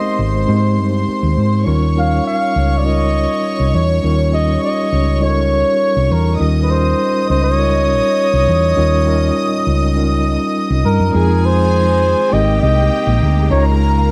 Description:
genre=soul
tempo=101 BPM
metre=4/4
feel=straight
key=unclear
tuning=A4 = 440 Hz
part: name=warm flugelhorn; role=melody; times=0.0-14.1 s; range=Bb4 to F5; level=-20 LUFS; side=equal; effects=none
part: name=warm symphonic violin section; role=second line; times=0.0-14.1 s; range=G4 to Eb6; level=-25 LUFS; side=equal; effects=none
part: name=mellow tine electric piano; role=accompaniment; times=0.0-14.1 s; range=G3 to C5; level=-22 LUFS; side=equal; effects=none
part: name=hollow-body short-scale fingered electric bass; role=bass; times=0.2-14.1 s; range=Ab1 to Ab2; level=-17 LUFS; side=equal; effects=none
part: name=phased string machine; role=sustained chords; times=11.1-14.1 s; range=C3 to F5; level=-29 LUFS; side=equal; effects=none
room=light reverb, studio reverb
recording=dark, warm production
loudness=-15 LUFS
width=mono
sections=0.0-11.1 A section; 11.1-14.1 B section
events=none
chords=0.0 Abmaj7; 1.7 Eb7; 11.1 Fm7; 12.3 Abmaj9; 13.5 Db6

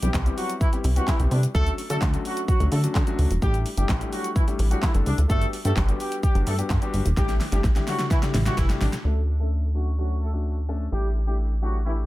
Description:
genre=dance-pop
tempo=128 BPM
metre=4/4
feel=straight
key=D major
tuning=A4 = 440 Hz
part: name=dark horn section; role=melody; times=0.0-11.9 s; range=D3 to A4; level=-31 LUFS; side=right 1 dB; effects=low-pass filter, analog delay
part: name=warm concert grand piano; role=accompaniment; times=0.0-12.1 s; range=F#3 to A4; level=-32 LUFS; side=left 4 dB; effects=sidechain pumping, low-pass filter, analog delay
part: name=plucky analog bass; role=bass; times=0.0-12.1 s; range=E1 to D3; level=-23 LUFS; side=equal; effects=sidechain pumping
part: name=pop drum kit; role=drums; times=0.0-9.0 s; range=handclaps, hi-hat, kick drum, shaker, snare drum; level=-24 LUFS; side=equal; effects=none
room=little or no reverb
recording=echo-heavy mix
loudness=-21 LUFS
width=side -17 dB against mid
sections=0.0-9.0 A section; 9.0-12.1 B section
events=drop 0.0-9.0; drum fill 7.2-9.0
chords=0.0 Cmaj7; 1.5 Dmaj7; 3.4 A7sus4; 5.3 Gmaj7; 7.2 A7sus4; 9.0 Dmaj7; 10.9 A7sus4

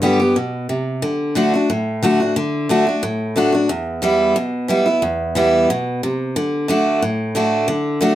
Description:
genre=bluegrass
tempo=180 BPM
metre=4/4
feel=straight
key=unclear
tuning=A4 = 442 Hz
part: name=picked steel-string acoustic guitar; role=solo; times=0.0-8.2 s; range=E2 to G4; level=-16 LUFS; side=equal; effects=none
room=wet studio reverb, RT60 0.5 s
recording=none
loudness=-16 LUFS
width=side -12 dB against mid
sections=0.0-1.0 A section; 1.0-8.2 B section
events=none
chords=0.0 G; 1.0 D; 3.7 Em; 6.4 D

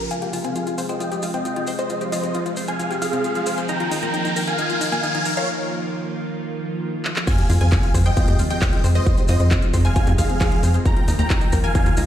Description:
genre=uplifting trance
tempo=134 BPM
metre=4/4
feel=straight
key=F minor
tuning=A4 = 439 Hz
part: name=lush unison pad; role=sustained chords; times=0.0-12.1 s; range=C3 to F4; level=-27 LUFS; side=right 1 dB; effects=chorus, sidechain pumping
part: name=tight sequencer bass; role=bass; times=0.0-0.1, 7.5-12.1 s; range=Db2 to F2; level=-18 LUFS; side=equal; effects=sidechain pumping
part: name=maracas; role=percussion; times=0.0-12.1 s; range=none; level=-36 LUFS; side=left 3 dB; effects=none
part: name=riser and sub drop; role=sound effects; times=0.0-9.1 s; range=none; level=-30 LUFS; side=equal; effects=none
part: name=big supersaw lead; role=melody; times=0.1-12.0 s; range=Ab4 to Bb5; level=-26 LUFS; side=equal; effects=phaser, sidechain pumping, low-pass filter, tape echo
part: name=wide unison pluck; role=second line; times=0.1-12.0 s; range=Eb5 to Bb5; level=-33 LUFS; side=equal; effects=none
part: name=analog pluck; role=arpeggios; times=0.1-12.0 s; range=Bb3 to C5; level=-29 LUFS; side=left 4 dB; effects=chorus, sidechain pumping, ping-pong delay
part: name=big-room dance drum kit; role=drums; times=0.1-12.1 s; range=crash cymbal, handclaps, hi-hat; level=-31 LUFS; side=equal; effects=none
part: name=electronic kick drum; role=drums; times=7.3-11.8 s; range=none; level=-19 LUFS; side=equal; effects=none
room=light reverb, digital ambience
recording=played on a big sound system in a bare room, stone room reverb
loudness=-18 LUFS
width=side -11 dB against mid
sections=0.1-7.3 A section; 7.3-12.1 B section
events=build-up 0.1-7.3; riser 0.1-5.5; filter sweep on supersaw synth 0.1-7.3; break 5.5-7.3; drum fill 7.0; drop 7.3-12.1; impact 7.3-9.1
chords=0.1 Fm; 3.7 Ebsus2; 7.3 Fm; 10.9 Ebsus2

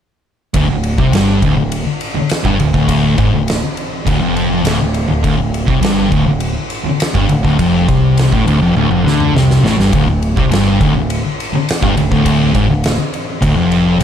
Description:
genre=stoner and doom metal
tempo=102 BPM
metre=4/4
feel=straight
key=D minor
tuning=A4 = 440 Hz
part: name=thick fuzz guitar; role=riff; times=0.5-14.0 s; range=D2 to D3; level=-16 LUFS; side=right 8 dB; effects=distortion
part: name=growling picked electric bass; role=bass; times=0.5-14.0 s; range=D1 to D2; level=-19 LUFS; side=equal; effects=overdrive
part: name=oversized low-tuned drum kit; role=drums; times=0.5-14.0 s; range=kick drum, ride cymbal, snare drum, toms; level=-18 LUFS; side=equal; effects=none
part: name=thick fuzz guitar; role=riff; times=0.6-14.0 s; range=D2 to D3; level=-15 LUFS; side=left 7 dB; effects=distortion
room=light reverb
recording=dark, warm production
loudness=-11 LUFS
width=side -9 dB against mid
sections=0.5-14.0 A section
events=drum fill 8.8-9.9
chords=0.5 Dm

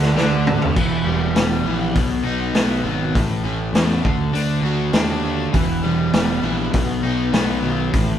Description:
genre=classic rock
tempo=100 BPM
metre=4/4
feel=straight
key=E minor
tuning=A4 = 440 Hz
part: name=tonewheel organ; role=sustained chords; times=0.0-0.7 s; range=G4 to E5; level=-31 LUFS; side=equal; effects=none
part: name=crunchy overdriven guitar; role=riff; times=0.0-8.2 s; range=A2 to F#4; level=-24 LUFS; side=left 6 dB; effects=none
part: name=distorted electric guitar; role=riff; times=0.0-0.8 s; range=D3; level=-25 LUFS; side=right 1 dB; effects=overdrive
part: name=overdriven semi-hollow guitar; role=riff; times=0.0-8.2 s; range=A2 to F#4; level=-24 LUFS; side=right 6 dB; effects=none
part: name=fuzz picked electric bass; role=bass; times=0.0-8.2 s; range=E1 to E2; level=-23 LUFS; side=equal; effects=overdrive
part: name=vintage drum kit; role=drums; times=0.0-8.1 s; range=crash cymbal, hi-hat, kick drum, snare drum, toms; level=-20 LUFS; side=equal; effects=none
room=moderate stone room reverb, RT60 1.2 s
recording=band playing live in one room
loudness=-17 LUFS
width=side -10 dB against mid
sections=0.8-8.2 A section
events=drum fill 0.2-0.8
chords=0.0 Em; 2.0 B; 3.2 A; 4.0 D; 5.5 Em; 6.7 B

